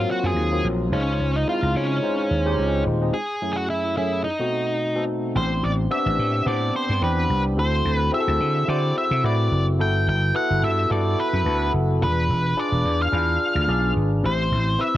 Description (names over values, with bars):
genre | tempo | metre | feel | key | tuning
polished 1980s jazz-funk pop | 108 BPM | 4/4 | swing 54% on 16ths | unclear | A4 = 438 Hz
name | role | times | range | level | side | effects
octave-fuzz lead guitar | melody | 0.0-15.0 s | C#4 to G5 | -24 LUFS | equal | distortion
barky tine electric piano | accompaniment | 0.0-15.0 s | F#2 to D5 | -25 LUFS | left 1 dB | wide subtle chorus, cassette tape
vintage slap bass | bass | 0.0-15.0 s | D#1 to D3 | -22 LUFS | equal | none
room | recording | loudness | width
light reverb | home recording on cassette | -20 LUFS | side -14 dB against mid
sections
0.0-5.4 A section; 5.4-15.0 B section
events
break 3.1-5.4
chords
0.0 G#13; 0.9 C#maj7; 3.1 F#m7; 4.2 B7b9; 5.4 Am11; 7.6 D9; 9.8 Gmaj13; 12.0 E7b9; 14.2 Am9